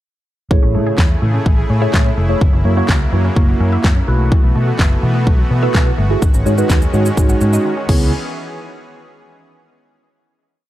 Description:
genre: dance-pop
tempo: 126 BPM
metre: 4/4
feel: straight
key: unclear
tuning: A4 = 440 Hz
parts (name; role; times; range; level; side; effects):
- mellow tine electric piano; accompaniment; 0.5-8.1 s; G#3 to C#5; -20 LUFS; right 2 dB; phaser, sidechain pumping
- supersaw pad; sustained chords; 0.5-8.1 s; C#3 to G#4; -24 LUFS; equal; sidechain pumping
- wide unison pluck; arpeggios; 0.5-8.1 s; D#3 to E5; -28 LUFS; equal; sidechain pumping, tape echo
- vintage muted fingered electric bass; bass; 0.5-8.1 s; E#1 to B2; -16 LUFS; equal; sidechain pumping
- pop drum kit; drums; 0.5-8.0 s; crash cymbal, handclaps, kick drum, shaker, snare drum; -14 LUFS; equal; none
room: little or no reverb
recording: dry, gritty hardware recording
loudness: -12 LUFS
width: side -14 dB against mid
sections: 0.5-8.1 bridge; 8.1-10.0 final hit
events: silent gap 7.7-8.1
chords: 0.5 Amaj7; 2.4 F#7; 4.1 B7sus4; 6.2 G#7sus4; 7.9 C#m7; 8.1 N.C.

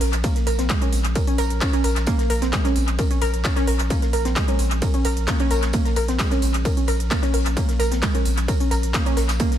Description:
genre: driving peak-time techno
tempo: 131 BPM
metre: 4/4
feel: straight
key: Bb minor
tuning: A4 = 439 Hz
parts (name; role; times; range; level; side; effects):
- warbly dusty pluck; riff; 0.0-9.5 s; Ab3 to Bb4; -24 LUFS; right 1 dB; chorus, sidechain pumping, analog delay
- saturated sub bass; bass; 0.0-9.4 s; Bb1; -24 LUFS; equal; overdrive, sidechain pumping, low-pass filter
- damped 70s drum kit; drums; 0.0-9.6 s; hi-hat, snare drum, tambourine; -38 LUFS; right 1 dB; sidechain pumping on hats, high-pass filter on hats, high-pass filter on snare, sidechain pumping on perc, high-pass filter on perc, high-pass filter on room, analog delay
- techno drum kit; drums; 0.0-9.6 s; handclaps, hi-hat, ride cymbal; -28 LUFS; equal; analog delay
- electronic kick drum; drums; 0.2-9.5 s; none; -22 LUFS; equal; none
room: small room ambience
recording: echo-heavy mix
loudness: -18 LUFS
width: side -10 dB against mid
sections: 0.0-9.6 A section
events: none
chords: none

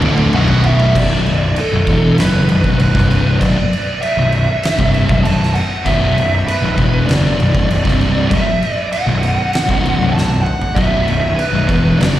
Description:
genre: stoner and doom metal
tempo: 98 BPM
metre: 4/4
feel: straight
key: B minor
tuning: A4 = 440 Hz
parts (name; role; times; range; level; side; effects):
- distorted electric guitar; riff; 0.0-1.0 s; B1 to D3; -19 LUFS; right 2 dB; overdrive
- thick fuzz guitar; riff; 0.0-12.2 s; B1 to F#3; -16 LUFS; left 3 dB; distortion
- thick fuzz guitar; riff; 0.0-12.2 s; B1 to F#3; -22 LUFS; right 6 dB; none
- fuzz picked electric bass; bass; 0.0-12.2 s; B0 to F#1; -18 LUFS; equal; overdrive
- oversized low-tuned drum kit; drums; 0.0-12.2 s; crash cymbal, kick drum, snare drum, toms; -19 LUFS; equal; none
- fuzz lead guitar; melody; 0.3-12.2 s; A4 to A5; -20 LUFS; right 2 dB; distortion, slapback echo, tape echo
room: light reverb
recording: live gig heard through the venue's PA, recital hall reverb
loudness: -12 LUFS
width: side -13 dB against mid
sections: 1.0-12.2 A section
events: drum fill 0.0-1.0, 10.1-10.8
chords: 0.0 Bm

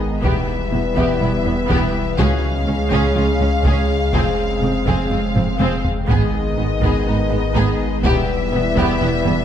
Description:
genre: cinematic, hybrid orchestral and electronic film score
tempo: 123 BPM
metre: 4/4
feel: straight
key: unclear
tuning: A4 = 440 Hz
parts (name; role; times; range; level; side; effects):
- warm symphonic violin section; melody; 0.0-9.4 s; D#5 to E#5; -27 LUFS; left 5 dB; none
- airy breathy pad; sustained chords; 0.0-9.4 s; G3 to E#5; -26 LUFS; equal; chorus
- clear trombone section; sustained chords; 0.0-9.4 s; C#3 to G#3; -29 LUFS; right 2 dB; none
- dark French horn section; sustained chords; 0.0-9.4 s; B3 to B4; -26 LUFS; left 5 dB; none
- saturated sub bass; bass; 0.0-9.4 s; E1 to C#2; -24 LUFS; equal; none
- felt-muted upright piano; texture; 0.0-9.4 s; F#4 to E#6; -34 LUFS; left 3 dB; none
- warm symphonic violin section; second line; 0.2-9.3 s; B3 to G#4; -28 LUFS; left 2 dB; none
- rich symphonic viola section; accompaniment; 0.2-9.3 s; B3 to C#4; -27 LUFS; right 2 dB; none
- thumb-piano-like synth pluck; arpeggios; 0.2-9.4 s; C#3 to D#4; -30 LUFS; right 2 dB; none
- warm symphonic cello section; bass; 0.2-9.3 s; C#2 to G#2; -25 LUFS; right 3 dB; none
- warm symphonic double bass section; bass; 0.2-9.3 s; E1 to C#2; -24 LUFS; right 3 dB; none
- solo taiko drums; drums; 0.2-9.2 s; none; -24 LUFS; left 1 dB; none
room: moderate concert hall reverb, RT60 2.4 s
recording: none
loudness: -16 LUFS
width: side -9 dB against mid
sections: 0.0-9.4 A section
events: drum fill 5.4-6.1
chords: 0.2 Em; 2.2 C#; 4.1 Fm; 6.1 G#m; 8.0 Em

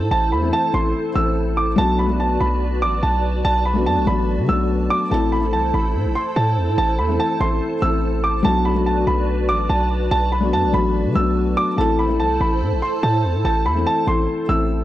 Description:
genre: hip hop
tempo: 144 BPM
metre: 4/4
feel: half-time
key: B phrygian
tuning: A4 = 440 Hz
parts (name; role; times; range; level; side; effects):
- dark concert grand piano; melody; 0.0-14.8 s; A5 to E6; -22 LUFS; right 1 dB; none
- felt-muted upright piano; accompaniment; 0.0-14.8 s; E3 to A4; -22 LUFS; left 3 dB; none
- hollow soft pad; sustained chords; 0.0-14.8 s; E4 to A5; -27 LUFS; right 1 dB; ensemble chorus
- hard-hitting 808-style bass; bass; 0.0-14.8 s; A1 to D3; -21 LUFS; equal; none
room: small room ambience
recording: dry, gritty hardware recording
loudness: -17 LUFS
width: side -14 dB against mid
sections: 0.0-1.8 A section; 1.8-14.8 A section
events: none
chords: 0.0 Am; 1.8 Bm7; 5.1 Am; 8.4 Bm7; 11.8 Am

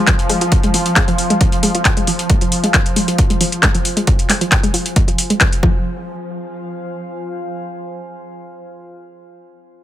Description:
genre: driving peak-time techno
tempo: 135 BPM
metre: 4/4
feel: straight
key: F minor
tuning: A4 = 440 Hz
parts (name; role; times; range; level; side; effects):
- analog pluck; riff; 0.0-5.8 s; F3 to Ab3; -20 LUFS; equal; chorus, overdrive, sidechain pumping, dub echo
- swarming drone; drone; 0.0-5.9 s; F3; -24 LUFS; right 1 dB; built-in reverb, sidechain pumping
- deep dark ambient pad; texture; 0.0-7.6 s; F4 to Ab5; -27 LUFS; left 1 dB; chorus, built-in reverb, sidechain pumping
- electronic kick drum; drums; 0.1-5.7 s; none; -15 LUFS; equal; none
- techno drum kit; drums; 0.1-5.6 s; handclaps, hi-hat; -17 LUFS; left 1 dB; sidechain pumping on hats
room: light reverb, digital ambience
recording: none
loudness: -13 LUFS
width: side -12 dB against mid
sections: 0.0-5.9 A section; 5.9-7.6 B section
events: fade-out on ambient pad 0.0-5.9; filter sweep on synth arpeggio sound 0.0-5.9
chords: 0.0 F5

